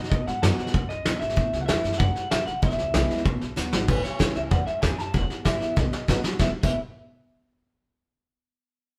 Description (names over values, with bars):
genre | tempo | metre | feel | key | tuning
rockabilly | 191 BPM | 4/4 | straight | E major | A4 = 440 Hz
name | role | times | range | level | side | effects
picked steel-string acoustic guitar | accompaniment | 0.0-6.8 s | E2 to F#4 | -35 LUFS | equal | none
upright bass | bass | 0.0-6.8 s | E1 to B2 | -32 LUFS | equal | none
soft brush drum kit | drums | 0.0-6.7 s | crash cymbal, hi-hat, kick drum, snare drum | -27 LUFS | equal | none
electric guitar through a small old amp | melody | 0.1-6.8 s | B4 to A5 | -32 LUFS | equal | none
room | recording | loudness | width
light reverb | band playing live in one room | -25 LUFS | mono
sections
0.0-3.9 A section; 3.9-6.4 B section; 6.4-7.7 C section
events
drum fill 3.6-3.9, 5.8-6.4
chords
0.0 B; 1.4 A; 2.6 E; 3.3 B; 3.9 A; 5.1 E; 5.8 B; 6.4 E